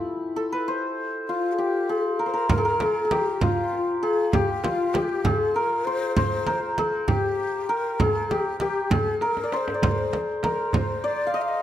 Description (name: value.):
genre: Persian modal ensemble.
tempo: 66 BPM (dotted quarters).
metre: 6/8.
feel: straight.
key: unclear.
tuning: A4 = 440 Hz.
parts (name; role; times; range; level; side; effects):
santur; melody; 0.0-11.6 s; E4 to F5; -24 LUFS; left 1 dB; none.
tombak; percussion; 0.1-11.1 s; none; -28 LUFS; right 3 dB; none.
breathy ney; second line; 1.3-11.6 s; F4 to F5; -29 LUFS; left 4 dB; none.
frame drum; percussion; 2.5-10.9 s; none; -27 LUFS; right 2 dB; none.
room: moderate recital hall reverb, RT60 1.4 s.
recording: close, detailed microphones.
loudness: -22 LUFS.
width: side -11 dB against mid.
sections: 0.0-2.5 A section; 2.5-11.6 B section.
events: drum fill 9.2-9.8.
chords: none.